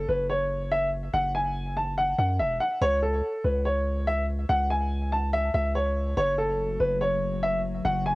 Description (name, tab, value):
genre	hip hop, drill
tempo	143 BPM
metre	4/4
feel	half-time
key	F# minor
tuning	A4 = 440 Hz
part	warm upright piano	melody	0.0-8.2 s	A4 to A5	-25 LUFS	equal	cassette tape
part	long sustained 808-style bass	bass	0.0-8.2 s	E1 to F#2	-29 LUFS	equal	none
part	warbly tape-like pad	sustained chords	6.2-8.2 s	C#3 to F#4	-34 LUFS	left 3 dB	chorus, built-in reverb
room	light reverb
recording	home recording on cassette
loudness	-24 LUFS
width	side -21 dB against mid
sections	0.0-6.2 A section; 6.2-8.2 B section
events	none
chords	0.0 N.C.; 2.8 C#5; 6.2 F#m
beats	0.30 0.72 | 1.14 1.55 1.98 2.39 | 2.81 3.23 3.65 4.07 | 4.49 4.91 5.33 5.75 | 6.17 6.59 7.01 7.43 | 7.85